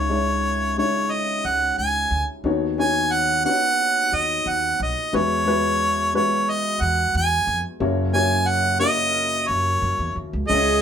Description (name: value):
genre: acoustic folk-pop ballad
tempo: 90 BPM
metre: 4/4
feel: straight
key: unclear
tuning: A4 = 441 Hz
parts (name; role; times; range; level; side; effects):
- bright harmonica; melody; 0.0-10.8 s; C#5 to G#5; -20 LUFS; right 1 dB; none
- dark grand piano; accompaniment; 0.0-10.8 s; F#1 to C#5; -25 LUFS; left 3 dB; none
- upright bass; bass; 0.0-10.8 s; B1 to F#2; -27 LUFS; right 1 dB; none
- rich viola; second line; 10.5-10.8 s; G#4; -23 LUFS; right 4 dB; none
room: moderate studio ambience, RT60 0.5 s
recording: band playing live in one room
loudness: -19 LUFS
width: side -8 dB against mid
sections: 0.0-10.5 A section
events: none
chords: 0.0 C#madd9; 2.5 Badd9/D#; 5.1 Eadd9; 7.8 F#7